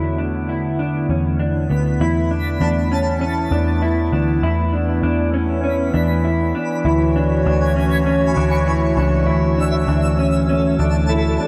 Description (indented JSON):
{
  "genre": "dream pop",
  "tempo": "99 BPM",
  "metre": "4/4",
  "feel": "straight",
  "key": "unclear",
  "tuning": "A4 = 440 Hz",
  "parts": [
    { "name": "warbly tape-like pad", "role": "sustained chords", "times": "0.0-11.5 s", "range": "D3 to C#5", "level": "-23 LUFS", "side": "equal", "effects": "chorus, built-in reverb" },
    { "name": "mellow electric guitar", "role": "arpeggios", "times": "0.0-11.5 s", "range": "B3 to E4", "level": "-24 LUFS", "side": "equal", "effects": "analog chorus, tape echo" },
    { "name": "vintage muted picked electric bass", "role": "bass", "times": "0.0-11.4 s", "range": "C#2 to E2", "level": "-22 LUFS", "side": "equal", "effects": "transformer saturation" }
  ],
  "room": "light reverb, digital ambience",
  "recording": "dry, gritty hardware recording",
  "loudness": "-18 LUFS",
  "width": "mono",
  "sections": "0.0-2.0 A section; 2.0-11.5 B section",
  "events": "none",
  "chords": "0.0 E7sus4; 6.8 Dmaj7"
}